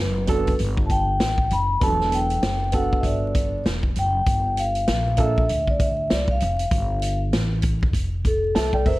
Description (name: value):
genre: hip hop, jazz-hop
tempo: 98 BPM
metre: 4/4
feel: swing 61% on 16ths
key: E minor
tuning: A4 = 436 Hz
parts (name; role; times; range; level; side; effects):
- vibraphone with soft mallets; melody; 0.0-9.0 s; A4 to B5; -24 LUFS; left 1 dB; none
- upright bass; bass; 0.0-9.0 s; E1 to D2; -24 LUFS; equal; none
- dark grand piano; accompaniment; 0.3-9.0 s; F#3 to A5; -27 LUFS; right 3 dB; none
- vintage drum kit; drums; 0.3-9.0 s; hi-hat, kick drum, snare drum; -24 LUFS; equal; none
room: studio reverb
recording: dark, warm production, vinyl crackle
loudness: -19 LUFS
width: side -18 dB against mid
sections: 0.0-9.0 A section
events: vibraphone solo 0.0-9.0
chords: 0.0 Em9; 4.3 Gm9